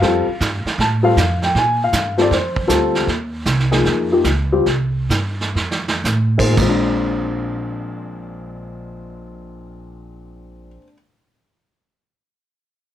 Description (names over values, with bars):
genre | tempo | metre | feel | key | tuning
jazz piano trio | 110-158 BPM | 4/4 | swing 66% on 8ths | Bb mixolydian | A4 = 440 Hz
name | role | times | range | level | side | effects
warm upright piano | melody | 0.0-10.9 s | Bb2 to A5 | -18 LUFS | left 2 dB | none
upright bass | bass | 0.0-10.8 s | Bb1 to Bb2 | -21 LUFS | right 1 dB | none
vintage brush drum kit | drums | 0.0-6.7 s | brushed snare drum, crash cymbal, hi-hat, kick drum, snare drum, toms | -22 LUFS | right 3 dB | none
room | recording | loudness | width
light reverb | none | -15 LUFS | side -11 dB against mid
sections
0.0-3.1 A section; 3.1-6.6 B section; 6.6-10.9 C section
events
slowing down 3.1-6.6; drum fill 5.6-6.0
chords
0.0 Fadd9; 1.5 Bb5; 2.3 F69; 3.1 Eb5; 3.8 Db; 4.7 C5; 5.6 F; 6.6 Bb9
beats
| 0.02 0.41 0.79 1.17 | 1.55 1.93 2.31 2.69 | 3.07 3.46 3.85 4.25 | 4.66 5.10 5.55 6.04 | 6.57 7.11 7.66 8.20 | 8.75 9.29 9.84 10.38